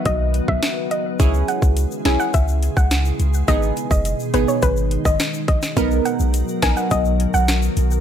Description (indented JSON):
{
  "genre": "dancehall",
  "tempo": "105 BPM",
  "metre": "4/4",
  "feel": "straight",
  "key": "unclear",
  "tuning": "A4 = 439 Hz",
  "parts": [
    { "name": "soft round pluck", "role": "melody", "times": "0.0-7.5 s", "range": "B4 to G#5", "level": "-24 LUFS", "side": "left 1 dB", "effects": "chorus, ping-pong delay" },
    { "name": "glassy FM pad", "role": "sustained chords", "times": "0.0-8.0 s", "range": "B2 to B4", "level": "-26 LUFS", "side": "left 2 dB", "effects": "ensemble chorus, built-in reverb, sidechain pumping" },
    { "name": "punchy sub bass", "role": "bass", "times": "0.1-8.0 s", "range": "F#1 to C#2", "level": "-19 LUFS", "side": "equal", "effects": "none" },
    { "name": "island pop drum kit", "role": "drums", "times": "0.1-7.9 s", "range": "hi-hat, kick drum, rim click, snare drum", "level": "-20 LUFS", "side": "equal", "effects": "none" },
    { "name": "glassy wavetable pluck", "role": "accompaniment", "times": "1.2-6.8 s", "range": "B3 to A#4", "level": "-24 LUFS", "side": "right 5 dB", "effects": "chorus" },
    { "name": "tube shaker", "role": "percussion", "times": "1.2-8.0 s", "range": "none", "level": "-36 LUFS", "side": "left 10 dB", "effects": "none" }
  ],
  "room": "little or no reverb",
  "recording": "none",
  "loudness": "-16 LUFS",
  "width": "side -9 dB against mid",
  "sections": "0.0-5.8 A section; 5.8-8.0 B section",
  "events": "none",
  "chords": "0.0 B; 1.2 C#m; 3.5 G#m; 5.8 Bmaj7"
}